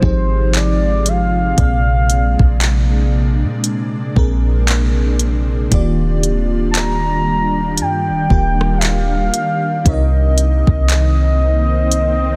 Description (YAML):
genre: contemporary R&B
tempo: 58 BPM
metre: 4/4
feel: swing 58% on 16ths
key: unclear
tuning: A4 = 443 Hz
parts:
  - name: gliding portamento lead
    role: melody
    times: 0.0-12.4 s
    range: C5 to Bb5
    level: -23 LUFS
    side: equal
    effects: chorus, delay
  - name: FM electric piano with soft pad layer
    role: accompaniment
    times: 0.0-12.4 s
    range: Bb2 to Eb5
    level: -24 LUFS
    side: equal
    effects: chorus, tremolo
  - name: ethereal airy pad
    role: sustained chords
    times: 0.0-12.4 s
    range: C3 to G4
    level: -26 LUFS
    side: equal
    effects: ensemble chorus, built-in reverb
  - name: soft 808-style bass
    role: bass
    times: 0.0-12.4 s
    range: Eb1 to Bb2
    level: -18 LUFS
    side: equal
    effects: none
  - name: smooth R&B drum kit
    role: drums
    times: 0.0-12.2 s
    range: handclaps, hi-hat, kick drum, rim click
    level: -20 LUFS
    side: equal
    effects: none
  - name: swell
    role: sound effects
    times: 11.1-12.4 s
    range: none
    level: -30 LUFS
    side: equal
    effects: none
room: little or no reverb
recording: dense, heavily limited modern master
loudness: -15 LUFS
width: mono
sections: 0.0-12.4 A section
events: swell 11.2-12.4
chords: 0.0 Fm7; 1.6 Bb9; 5.7 Ebmaj9; 9.9 Cm7